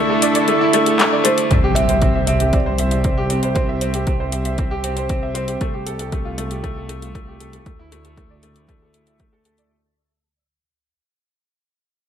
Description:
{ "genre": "piano and strings electronica", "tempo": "117 BPM", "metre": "4/4", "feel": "straight", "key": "C major", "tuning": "A4 = 440 Hz", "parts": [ { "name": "felt-muted upright piano", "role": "melody", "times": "0.0-5.8 s", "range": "C5 to E5", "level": "-24 LUFS", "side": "right 2 dB", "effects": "ping-pong delay" }, { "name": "lush unison pad", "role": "sustained chords", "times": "0.0-1.5 s", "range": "D3 to A4", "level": "-21 LUFS", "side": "right 1 dB", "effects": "chorus, sidechain pumping" }, { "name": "clear upright piano", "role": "riff", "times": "0.0-9.7 s", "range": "A3 to E5", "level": "-20 LUFS", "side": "equal", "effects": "ping-pong delay" }, { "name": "deep house drum kit", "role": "drums", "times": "0.2-9.7 s", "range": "handclaps, hi-hat", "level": "-22 LUFS", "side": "left 1 dB", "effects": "none" }, { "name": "rich chamber double bass section", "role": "bass", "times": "1.5-9.7 s", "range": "C2 to D2", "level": "-23 LUFS", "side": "equal", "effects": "sidechain pumping" }, { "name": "electronic kick drum", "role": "drums", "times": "1.5-9.3 s", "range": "none", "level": "-20 LUFS", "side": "equal", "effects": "none" }, { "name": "impact", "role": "sound effects", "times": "1.5-3.6 s", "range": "none", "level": "-23 LUFS", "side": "equal", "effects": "none" } ], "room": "moderate echo chamber reverb, RT60 1.6 s, digital ambience", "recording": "none", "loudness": "-16 LUFS", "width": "side -9 dB against mid", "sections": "0.0-1.5 A section; 1.5-9.7 B section", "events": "break 0.0-1.5; drop 0.0-1.5; fade-out 1.5-9.7; impact 1.5-3.6", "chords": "0.0 Dsus2; 1.5 C; 5.6 Fadd9/C; 7.7 Dsus2", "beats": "0.48 0.99 | 1.50 2.02 2.53 3.04 | 3.56 4.07 4.58 5.09 | 5.61 6.12 6.63 7.15 | 7.66 8.17 8.68 9.20" }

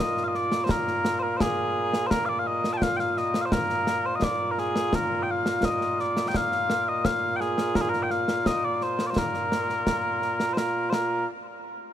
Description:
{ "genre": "scottish traditional, Scottish pipe music", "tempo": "85 BPM", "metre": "2/4", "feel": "straight", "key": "Bb mixolydian", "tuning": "A4 = 440 Hz", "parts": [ { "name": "mellow small bagpipes", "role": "melody", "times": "0.0-11.3 s", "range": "Bb2 to A5", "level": "-24 LUFS", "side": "equal", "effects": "tape echo" }, { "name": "concert snare drum and concert bass drum", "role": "drums", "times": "0.2-11.3 s", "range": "none", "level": "-29 LUFS", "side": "equal", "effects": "none" } ], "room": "light reverb", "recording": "none", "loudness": "-23 LUFS", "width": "side -10 dB against mid", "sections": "0.0-10.6 A section; 10.6-11.9 B section", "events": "none", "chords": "none", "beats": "0.00 | 0.70 1.41 | 2.11 2.82 | 3.52 4.23 | 4.94 5.64 | 6.35 7.05 | 7.76 8.47 | 9.17 9.88 | 10.58" }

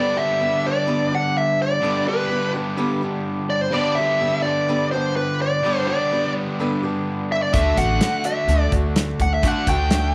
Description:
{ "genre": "folk rock and heartland rock", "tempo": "126 BPM", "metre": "4/4", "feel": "straight", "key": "G major", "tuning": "A4 = 439 Hz", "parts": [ { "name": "bluesy overdriven lead guitar", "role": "melody", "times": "0.0-10.1 s", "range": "B4 to G5", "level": "-24 LUFS", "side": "equal", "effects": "distortion" }, { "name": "picked swing-style acoustic guitar", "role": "accompaniment", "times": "0.0-10.1 s", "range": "G2 to G4", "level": "-29 LUFS", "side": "equal", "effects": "none" }, { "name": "crunchy overdriven guitar", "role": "riff", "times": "0.0-10.1 s", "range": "G2 to G4", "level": "-28 LUFS", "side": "equal", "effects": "none" }, { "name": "upright bass", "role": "bass", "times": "7.5-10.1 s", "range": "A1 to D3", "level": "-24 LUFS", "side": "equal", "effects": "none" }, { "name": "natural country drum kit", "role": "drums", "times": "7.5-10.0 s", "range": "hi-hat, kick drum, snare drum", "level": "-25 LUFS", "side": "equal", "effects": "none" } ], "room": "light reverb, small room ambience", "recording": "none", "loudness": "-21 LUFS", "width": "mono", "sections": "0.0-10.1 A section", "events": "none", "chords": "0.0 G; 7.5 D", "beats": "0.40 0.87 1.35 | 1.82 2.30 2.77 3.25 | 3.72 4.20 4.67 5.15 | 5.63 6.10 6.58 7.05 | 7.53 8.01 8.48 8.96 | 9.43 9.91" }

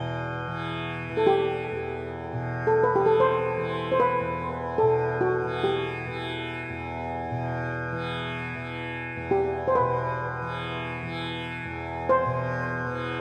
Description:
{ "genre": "world meditative, free-time meditation music", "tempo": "free time", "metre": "none", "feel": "none", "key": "E minor", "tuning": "A4 = 440 Hz", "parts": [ { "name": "tanpura", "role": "drone", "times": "0.0-13.2 s", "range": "E2 to E3", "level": "-32 LUFS", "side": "equal", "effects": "none" }, { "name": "crotales", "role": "texture", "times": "0.0-6.5 s", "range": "G7", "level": "-54 LUFS", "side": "equal", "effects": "none" }, { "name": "steel pan", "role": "melody", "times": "1.2-13.1 s", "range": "F#4 to C5", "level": "-27 LUFS", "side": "equal", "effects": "diffuse ambient delay" } ], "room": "wet church reverb, RT60 3.2 s", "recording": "dark, warm production", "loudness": "-27 LUFS", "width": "mono", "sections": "0.0-13.2 A section", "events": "none", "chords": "none", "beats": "free time" }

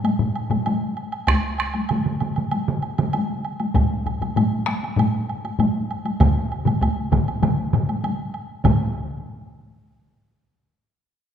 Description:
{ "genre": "japanese traditional, taiko drum ensemble", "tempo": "98 BPM", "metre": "4/4", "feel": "straight", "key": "none", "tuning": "none", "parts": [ { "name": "taiko ensemble", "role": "percussion", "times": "0.0-8.9 s", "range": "none", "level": "-25 LUFS", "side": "left 2 dB", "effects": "none" }, { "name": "woodblock", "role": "percussion", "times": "0.0-8.9 s", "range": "none", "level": "-30 LUFS", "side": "right 4 dB", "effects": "none" }, { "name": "taiko ensemble", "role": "percussion", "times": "0.2-9.2 s", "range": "none", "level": "-25 LUFS", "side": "left 3 dB", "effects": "none" }, { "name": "solo taiko drums", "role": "percussion", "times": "1.3-9.2 s", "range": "none", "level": "-24 LUFS", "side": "right 4 dB", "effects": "none" }, { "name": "solo taiko drums", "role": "percussion", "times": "1.3-8.9 s", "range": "none", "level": "-23 LUFS", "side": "right 1 dB", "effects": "none" } ], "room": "wet scoring stage reverb, RT60 1.8 s", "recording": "minimal, uncompressed stereo recording", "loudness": "-20 LUFS", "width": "side -8 dB against mid", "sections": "0.0-8.7 A section; 8.7-11.1 B section", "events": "none", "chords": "none", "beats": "0.04 0.66 | 1.28 1.90 2.52 3.13 | 3.75 4.36 4.98 5.59 | 6.21 6.82 7.43 8.04 | 8.65" }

